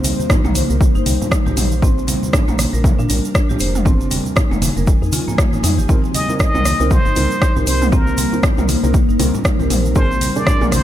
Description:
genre	afro house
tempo	118 BPM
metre	4/4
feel	swing 58% on 16ths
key	C minor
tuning	A4 = 439 Hz
part	ethereal airy pad	sustained chords	0.0-10.8 s	F3 to Ab5	-26 LUFS	left 1 dB	ensemble chorus, built-in reverb, sidechain pumping
part	marimba with medium mallets	arpeggios	0.0-10.7 s	G3 to C5	-23 LUFS	left 1 dB	sidechain pumping, tape echo
part	woody FM bass	bass	0.0-10.8 s	F1 to Bb2	-20 LUFS	equal	sidechain pumping
part	deep house drum kit	drums	0.0-10.8 s	hi-hat, rim click, toms	-22 LUFS	equal	none
part	congas	percussion	0.0-10.8 s	none	-24 LUFS	right 2 dB	none
part	egg shaker	percussion	0.0-10.8 s	none	-29 LUFS	right 6 dB	none
part	electronic kick drum	drums	0.3-10.6 s	none	-15 LUFS	equal	none
part	felt-muted upright piano	stabs	5.9-10.7 s	C4 to Bb4	-25 LUFS	right 2 dB	sidechain pumping, tape echo
part	trumpet with plunger mute	melody	6.1-10.8 s	Bb4 to Eb5	-22 LUFS	left 1 dB	tape echo
room	small room ambience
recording	none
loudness	-13 LUFS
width	side -12 dB against mid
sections	0.0-10.8 A section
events	none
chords	0.0 Cm7; 1.8 Bb; 3.9 Fm7; 5.9 Cm7; 10.0 Bb7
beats	0.30 0.81 1.31 | 1.82 2.33 2.84 3.35 | 3.86 4.37 4.88 5.38 | 5.89 6.40 6.91 7.42 | 7.93 8.43 8.94 9.45 | 9.96 10.47

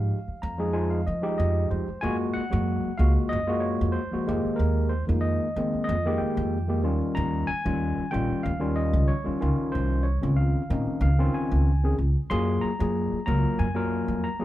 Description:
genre	electric jazz fusion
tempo	93 BPM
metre	4/4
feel	straight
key	unclear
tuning	A4 = 439 Hz
part	overdriven tine electric piano	accompaniment	0.0-14.4 s	Eb3 to C6	-26 LUFS	left 1 dB	none
part	upright bass	bass	0.0-14.4 s	Bb1 to F3	-25 LUFS	equal	none
room	moderate large studio reverb, RT60 1.1 s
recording	band playing live in one room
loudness	-23 LUFS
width	side -14 dB against mid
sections	0.0-2.0 A section; 2.0-14.4 B section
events	tine electric piano fill 0.1-2.0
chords	0.0 Fm9; 2.0 Gbmaj9; 4.3 Fm11; 6.8 Eb9; 9.4 Dbmaj9; 12.3 Gbmaj9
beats	0.10 0.75 1.39 | 2.03 2.67 3.31 3.96 | 4.60 5.24 5.88 6.52 | 7.17 7.81 8.45 9.09 | 9.74 10.38 11.02 11.67 | 12.31 12.95 13.59 14.24

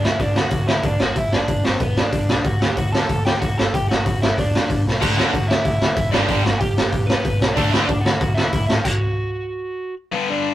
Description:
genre	punk rock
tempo	187 BPM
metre	4/4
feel	straight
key	unclear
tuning	A4 = 440 Hz
part	overdriven electric guitar	melody	0.0-10.5 s	B3 to A5	-24 LUFS	equal	none
part	growling picked electric bass	bass	0.0-8.8 s	E1 to A2	-27 LUFS	equal	overdrive
part	raw garage drum kit	drums	0.0-8.9 s	crash cymbal, hi-hat, kick drum, snare drum	-18 LUFS	equal	none
part	tight distorted guitar	riff	5.0-7.9, 10.1-10.5 s	G2 to D4	-24 LUFS	left 6 dB	distortion
part	tight distorted guitar	riff	5.0-7.9 s	G2 to D4	-23 LUFS	right 4 dB	distortion
room	light reverb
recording	rough rehearsal-room recording, tube saturation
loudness	-17 LUFS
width	side -14 dB against mid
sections	0.0-10.1 A section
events	drum fill 4.9; stop 8.9-10.1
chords	0.0 D; 1.0 G; 2.4 D; 3.6 G5; 5.0 D; 6.1 G; 7.6 D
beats	0.20 0.52 0.84 | 1.16 1.48 1.80 2.12 | 2.45 2.77 3.09 3.41 | 3.73 4.05 4.37 4.69 | 5.01 5.33 5.65 5.97 | 6.29 6.61 6.93 7.25 | 7.57 7.89 8.21 8.53 | 8.85 9.17 9.49 9.81 | 10.13 10.44

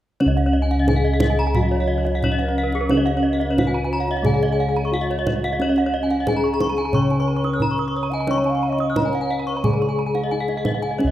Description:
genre	Balinese gamelan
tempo	89 BPM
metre	4/4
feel	straight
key	Db slendro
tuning	A4 = 438 Hz
part	gamelan-type bronze metallophone	melody	0.2-11.1 s	Db4 to Db5	-24 LUFS	left 2 dB	none
part	gamelan-type bronze metallophone	accompaniment	0.2-11.1 s	Db3 to Db4	-28 LUFS	left 2 dB	none
part	gamelan-type bronze metallophone	arpeggios	0.2-11.1 s	Ab4+25c to Gb6-35c	-27 LUFS	left 2 dB	none
part	gamelan-type bossed gongs	bass	0.2-11.1 s	Db2 to Db5	-23 LUFS	equal	none
part	kendang	percussion	0.2-11.1 s	none	-26 LUFS	right 2 dB	none
part	gamelan-type bronze metallophone	arpeggios	0.3-11.1 s	Cb5-45c to Eb6+30c	-28 LUFS	right 5 dB	none
part	low xiao	second line	1.2-10.6 s	Ab4+25c to Gb5+31c	-30 LUFS	right 3 dB	none
room	moderate plate reverb, RT60 3.3 s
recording	rough home demo mix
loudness	-18 LUFS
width	side -12 dB against mid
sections	0.2-11.1 A section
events	none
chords	none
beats	| 0.20 0.87 1.55 2.22 | 2.90 3.57 4.24 4.92 | 5.59 6.27 6.94 7.62 | 8.29 8.96 9.64 10.31 | 10.99

